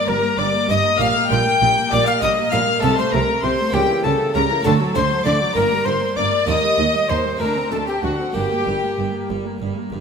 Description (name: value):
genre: classical, baroque-style concerto movement with solo episodes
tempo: 65 BPM (dotted quarters)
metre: 6/8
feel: straight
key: G minor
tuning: A4 = 440 Hz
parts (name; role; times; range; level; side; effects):
- alto recorder; melody; 0.0-9.3 s; F#4 to G5; -21 LUFS; left 2 dB; none
- warm chamber violin section; melody; 0.0-9.3 s; F#5 to G6; -24 LUFS; left 5 dB; none
- rich studio violin section; second line; 0.0-9.3 s; F#4 to G5; -24 LUFS; left 3 dB; none
- dark chamber viola section; accompaniment; 0.0-10.0 s; E3 to D4; -26 LUFS; right 2 dB; none
- harpsichord; accompaniment; 0.0-10.0 s; D2 to G4; -26 LUFS; right 2 dB; none
- dark chamber cello section; bass; 0.1-10.0 s; D2 to D3; -25 LUFS; right 4 dB; none
- rich studio double bass section; bass; 0.1-10.0 s; G1 to Eb2; -26 LUFS; right 5 dB; none
room: wet recital hall reverb, RT60 1.7 s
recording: none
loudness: -16 LUFS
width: side -6 dB against mid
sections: 0.0-10.0 A section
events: none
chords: 0.0 Gm; 1.0 Gm/Bb; 2.8 Am7b5/C; 3.7 C#dim7; 4.6 D7; 5.6 Gm; 6.5 Eb; 7.4 D5; 8.3 Gm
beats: 0.07 | 1.00 1.91 | 2.83 3.74 | 4.65 5.56 | 6.47 7.40 | 8.35 9.29